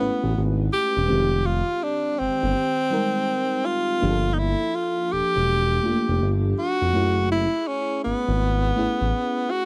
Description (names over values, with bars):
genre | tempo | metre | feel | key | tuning
R&B, neo-soul | 82 BPM | 4/4 | swing 62% on 16ths | unclear | A4 = 439 Hz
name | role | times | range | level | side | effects
bright tenor saxophone | melody | 0.0-9.7 s | B3 to G4 | -26 LUFS | equal | none
FM electric piano with soft pad layer | accompaniment | 0.0-9.7 s | Eb3 to B4 | -30 LUFS | equal | chorus
smooth synth bass | bass | 0.0-9.1 s | E1 to A1 | -26 LUFS | equal | none
room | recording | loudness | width
little or no reverb | dry, close 1970s-style studio recording | -23 LUFS | mono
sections
0.0-9.7 A section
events
none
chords
0.0 F#m9; 1.1 Fm9; 4.0 Gm9; 6.9 F#m9